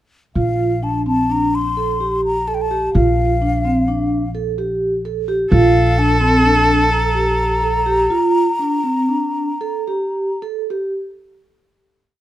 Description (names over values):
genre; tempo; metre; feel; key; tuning
contemporary instrumental, chamber music in an uneven meter; 255 BPM (eighths); 11/8; straight; Bb major; A4 = 437 Hz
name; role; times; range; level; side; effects
mellow hollow concert flute; melody; 0.4-10.4 s; F5 to C6; -20 LUFS; left 2 dB; none
vibraphone with soft mallets; arpeggios; 0.4-10.9 s; C4 to A4; -18 LUFS; right 1 dB; none
upright bass; bass; 0.4-8.1 s; Bb1; -20 LUFS; equal; none
clear viola; second line; 5.5-8.1 s; A4; -18 LUFS; right 2 dB; none
room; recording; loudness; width
light reverb; close, detailed microphones; -15 LUFS; side -13 dB against mid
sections
0.4-11.0 A section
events
slowing down 6.9-11.0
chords
0.4 Bbmaj7